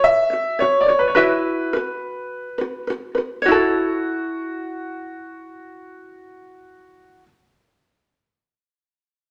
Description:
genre	acoustic pop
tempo	105 BPM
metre	4/4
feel	swing 55% on 16ths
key	F# minor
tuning	A4 = 440 Hz
part	bright upright piano	melody	0.0-7.2 s	F#4 to E5	-22 LUFS	equal	none
part	ukulele	accompaniment	0.0-7.3 s	E4 to E5	-24 LUFS	equal	none
room	wet large studio reverb, RT60 0.9 s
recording	none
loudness	-20 LUFS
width	mono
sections	0.0-3.5 A section; 3.5-5.7 B section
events	none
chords	0.0 F#7(no3); 1.2 Esus2; 3.5 F#m7

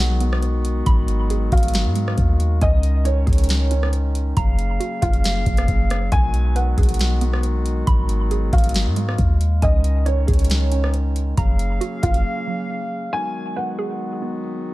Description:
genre	hip hop, atmospheric cloud-rap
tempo	137 BPM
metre	4/4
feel	half-time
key	B lydian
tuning	A4 = 439 Hz
part	felt-muted upright piano	melody	0.0-14.4 s	C#5 to G#5	-28 LUFS	right 1 dB	low-pass filter, tape echo
part	dark woodwind section	sustained chords	0.0-14.7 s	C#3 to E#5	-27 LUFS	left 1 dB	sidechain pumping
part	hollow square pluck	arpeggios	0.0-14.7 s	F#3 to B5	-32 LUFS	right 5 dB	chorus, low-pass filter, tape echo
part	clean 808-style bass	bass	0.0-12.2 s	F#1 to G#2	-19 LUFS	equal	none
part	booming analog drum machine	drums	0.0-12.2 s	hi-hat, kick drum, rim click, snare drum	-20 LUFS	equal	none
room	little or no reverb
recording	none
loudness	-17 LUFS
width	side -18 dB against mid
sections	0.0-13.1 A section; 13.1-14.7 B section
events	break 12.2-13.1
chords	0.0 B6; 0.9 G#m7; 2.6 C#sus2; 4.4 F#maj7; 6.1 B6; 7.9 G#m7; 9.6 C#sus2; 11.4 F#maj7; 13.1 B6

